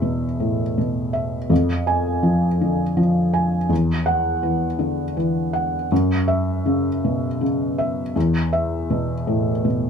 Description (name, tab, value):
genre	neoclassical minimalist piano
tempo	54 BPM (dotted quarters)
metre	6/8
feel	rubato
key	unclear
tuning	A4 = 440 Hz
part	felt-muted upright piano	solo	0.0-9.9 s	E2 to Ab5	-18 LUFS	equal	none
room	light reverb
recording	minimal, uncompressed stereo recording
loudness	-18 LUFS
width	side -7 dB against mid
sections	0.0-9.9 A section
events	none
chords	0.0 E5; 1.5 Fm6; 3.7 Esus2; 5.9 F#5; 8.1 E5